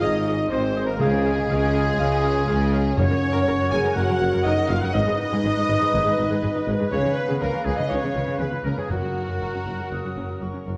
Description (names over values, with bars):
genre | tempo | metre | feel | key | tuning
cinematic | 122 BPM | 4/4 | straight | F# major | A4 = 440 Hz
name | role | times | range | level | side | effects
warm symphonic violin section | melody | 0.0-10.4 s | F#4 to G#5 | -34 LUFS | equal | none
clear oboe | second line | 0.0-10.4 s | F#4 to G#5 | -37 LUFS | equal | none
mellow clarinet | second line | 0.0-10.6 s | G#4 to B4 | -36 LUFS | equal | none
rich studio violin section | second line | 0.0-10.4 s | F#4 to G#5 | -37 LUFS | equal | none
silver concert flute | second line | 0.0-10.8 s | D#5 to D#6 | -35 LUFS | equal | none
rich symphonic viola section | accompaniment | 0.0-10.7 s | C#4 to E#5 | -35 LUFS | equal | none
dark French horn section | sustained chords | 0.0-10.4 s | F#3 to G#4 | -29 LUFS | equal | none
concert harp | arpeggios | 0.0-10.8 s | F#2 to B5 | -37 LUFS | equal | none
clear trumpet section | stabs | 0.0-10.4 s | F#4 to G#5 | -32 LUFS | equal | none
mellow tuba | bass | 0.0-10.7 s | F#1 to C#2 | -33 LUFS | equal | none
rich symphonic cello section | bass | 0.0-10.7 s | F#2 to C#3 | -31 LUFS | equal | none
rich symphonic double bass section | bass | 0.0-10.7 s | F#1 to C#2 | -32 LUFS | equal | none
timpani | percussion | 1.0-3.7, 8.9-9.6 s | F#2 to C#3 | -31 LUFS | equal | none
room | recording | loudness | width
wet scoring stage reverb, RT60 1.9 s | worn, warbling old tape, cassette tape, warbly pitch drift | -22 LUFS | mono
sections
0.0-10.8 A section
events
none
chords
0.0 G#; 1.0 C#; 3.0 F#; 4.9 G#m; 6.9 C#7; 8.9 F#